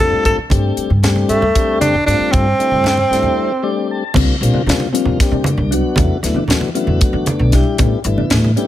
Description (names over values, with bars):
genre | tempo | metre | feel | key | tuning
electric jazz fusion | 231 BPM (eighths) | 7/8 | straight | unclear | A4 = 444 Hz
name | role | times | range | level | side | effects
breathy tenor saxophone | melody | 0.0-3.9 s | A3 to A4 | -15 LUFS | right 1 dB | slapback echo
mellow tonewheel organ | accompaniment | 0.0-8.7 s | D3 to A5 | -20 LUFS | left 4 dB | slow rotary speaker
upright bass | bass | 0.0-8.5 s | G1 to E3 | -18 LUFS | equal | none
congas | percussion | 0.1-8.6 s | none | -21 LUFS | right 2 dB | none
crisp fusion drum kit | drums | 0.3-8.7 s | crash cymbal, hi-hat, kick drum, snare drum | -18 LUFS | equal | none
mellow electric guitar | stabs | 4.1-8.7 s | C4 to D4 | -23 LUFS | left 2 dB | wide subtle chorus
room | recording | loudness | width
light reverb, small room ambience | none | -13 LUFS | side -12 dB against mid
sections
0.0-4.2 A section; 4.2-8.7 B section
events
break 3.4-4.2; tonewheel organ fill 3.4-4.2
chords
0.0 G9sus4; 4.2 C9sus4; 6.0 E9sus4; 7.8 A9sus4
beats
0.25 | 0.51 0.77 1.03 1.29 1.55 1.81 2.07 | 2.33 2.59 2.85 3.11 3.38 3.63 3.90 | 4.16 4.42 4.68 4.94 5.20 5.46 5.72 | 5.98 6.24 6.50 6.75 7.01 7.28 7.53 | 7.79 8.05 8.31 8.57